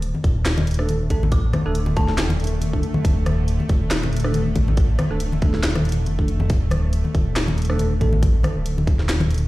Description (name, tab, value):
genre	deep dubstep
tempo	139 BPM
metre	4/4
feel	swing 55% on 16ths, half-time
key	unclear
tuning	A4 = 441 Hz
part	bowed-like drone	sustained chords	0.7-9.5 s	D3 to A3	-30 LUFS	equal	built-in reverb
part	dark detuned saw bass	bass	0.0-9.5 s	D1 to A1	-21 LUFS	equal	none
part	garage drum kit	drums	0.0-9.5 s	handclaps, hi-hat, rim click, snare drum	-27 LUFS	equal	studio reverb
part	congas	percussion	0.1-9.3 s	none	-26 LUFS	left 2 dB	none
part	electronic kick drum	drums	0.2-9.0 s	none	-19 LUFS	equal	studio reverb
part	bell-like tine electric piano	stabs	0.8-8.1 s	A3 to A4	-30 LUFS	right 2 dB	phaser, dub echo
part	dark detuned synth bell	melody	1.3-2.3 s	A5 to D6	-33 LUFS	left 2 dB	chorus, dub echo
room	light reverb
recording	played on a big sound system in a bare room, stone room reverb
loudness	-18 LUFS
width	side -18 dB against mid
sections	0.0-9.5 A section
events	none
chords	0.0 D5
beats	0.02 0.46 0.89 | 1.32 1.75 2.18 2.61 | 3.05 3.48 3.91 4.34 | 4.77 5.20 5.64 6.07 | 6.50 6.93 7.36 7.79 | 8.23 8.66 9.09